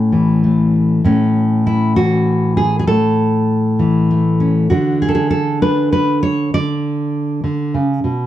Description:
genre	folk, solo fingerstyle acoustic guitar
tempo	66 BPM (dotted quarters)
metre	6/8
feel	straight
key	A major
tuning	A4 = 440 Hz
part	nylon-string guitar	solo	0.0-8.3 s	A2 to D5	-13 LUFS	equal	none
room	light reverb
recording	dark, warm production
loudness	-13 LUFS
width	side -12 dB against mid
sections	0.0-1.1 A section; 1.1-8.3 A section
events	none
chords	0.0 A; 1.1 A6; 4.7 Bm13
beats	0.14 | 1.05 1.97 | 2.88 3.79 | 4.71 5.62 | 6.54 7.45

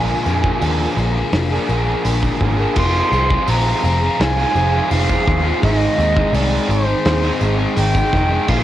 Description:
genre	rock, shoegaze and dream pop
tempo	84 BPM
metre	4/4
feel	straight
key	Ab lydian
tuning	A4 = 439 Hz
part	silver concert flute	melody	0.0-8.6 s	C5 to C6	-21 LUFS	right 1 dB	cassette tape, analog delay
part	ethereal airy pad	sustained chords	0.0-8.6 s	Eb4 to C6	-28 LUFS	right 3 dB	ensemble chorus, built-in reverb, cassette tape
part	crunchy overdriven guitar	riff	0.0-8.6 s	Ab2 to Ab4	-21 LUFS	left 6 dB	lush chorus, cassette tape
part	raw garage guitar	riff	0.0-8.6 s	Ab2 to Ab4	-24 LUFS	right 8 dB	overdrive, reverse reverb, cassette tape
part	vintage muted picked electric bass	bass	0.0-8.6 s	F1 to F2	-19 LUFS	equal	none
part	tambourine	percussion	0.1-8.1 s	none	-40 LUFS	right 10 dB	none
part	loose indie drum kit	drums	0.4-8.6 s	crash cymbal, hi-hat, kick drum, snare drum	-23 LUFS	equal	none
room	light reverb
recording	home recording on cassette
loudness	-14 LUFS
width	side -12 dB against mid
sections	0.0-2.8 A section; 2.8-8.6 A section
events	none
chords	0.0 Bb7(no3); 2.8 Fm7; 5.6 Abmaj7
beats	0.61 1.33 2.05 | 2.76 3.48 4.20 4.91 | 5.62 6.34 7.05 7.77 | 8.48

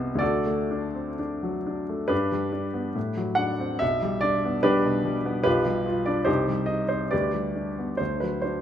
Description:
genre	classical, romantic character piece for solo piano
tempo	60-74 BPM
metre	2/4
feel	rubato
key	G major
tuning	A4 = 440 Hz
part	clear baby grand piano	solo	0.0-8.6 s	B1 to F#5	-23 LUFS	equal	none
room	moderate recital hall reverb, RT60 1.7 s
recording	none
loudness	-23 LUFS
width	side -10 dB against mid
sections	0.0-2.1 A section; 2.1-8.6 B section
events	none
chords	0.2 D; 2.1 G; 3.0 D7/A; 3.8 G/B; 5.5 G7/B; 6.3 Cm; 7.1 G/D; 8.0 D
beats	| 0.20 1.18 | 2.11 2.96 | 3.81 4.64 | 5.46 6.28 | 7.12 8.00

